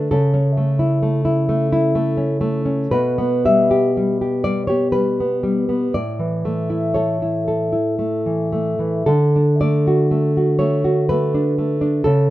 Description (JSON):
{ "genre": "romantic piece for solo classical guitar", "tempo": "52-67 BPM", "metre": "3/4", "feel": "rubato", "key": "D major", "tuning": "A4 = 440 Hz", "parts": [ { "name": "nylon-string guitar", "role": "solo", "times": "0.0-12.3 s", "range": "A2 to E5", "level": "-16 LUFS", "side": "equal", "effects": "none" } ], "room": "moderate studio reverb, RT60 0.5 s", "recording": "minimal, uncompressed stereo recording", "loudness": "-16 LUFS", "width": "side -15 dB against mid", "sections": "0.0-12.3 A section", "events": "none", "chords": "0.1 A/C#; 2.9 G/B; 5.9 A; 9.1 D", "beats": "| 0.11 1.02 1.94 | 2.91 3.93 4.90 | 5.90 6.93 7.98 | 9.07 10.15 11.12 | 12.06" }